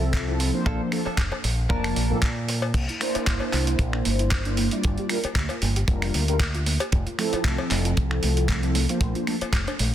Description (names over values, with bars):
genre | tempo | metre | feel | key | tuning
nu-disco, nu disco | 115 BPM | 4/4 | swing 54% on 16ths | C mixolydian | A4 = 439 Hz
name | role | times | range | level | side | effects
mellow synth brass | accompaniment | 0.0-9.4 s | F3 to A5 | -28 LUFS | equal | chorus, phaser, sidechain pumping, tape echo
direct-recorded clean electric guitar | riff | 0.0-2.5 s | Bb3 to Bb4 | -35 LUFS | right 2 dB | wide subtle chorus, low-pass filter, tape echo
fingered electric bass with an envelope filter | bass | 0.0-9.9 s | F1 to Bb2 | -25 LUFS | equal | none
dusty soul sampler-style drum kit | drums | 0.1-9.9 s | crash cymbal, finger snaps, handclaps, hi-hat | -29 LUFS | right 1 dB | overdrive
kick drum | drums | 0.1-9.6 s | none | -25 LUFS | equal | none
cowbell | percussion | 1.1-9.8 s | none | -33 LUFS | left 6 dB | none
soft round pluck | arpeggios | 2.8-9.9 s | A3 to G4 | -34 LUFS | right 4 dB | analog chorus, sidechain pumping, tape echo
room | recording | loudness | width
studio ambience | dense, heavily limited modern master | -22 LUFS | side -11 dB against mid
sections
0.0-9.9 A section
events
none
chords
0.0 Fmaj7; 0.7 Bbmaj7; 2.8 C9; 4.8 Gm7; 6.9 Fmaj7; 9.0 Bbmaj7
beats
0.14 | 0.66 1.19 1.71 2.23 | 2.75 3.27 3.79 4.32 | 4.84 5.36 5.88 6.40 | 6.92 7.45 7.97 8.49 | 9.01 9.53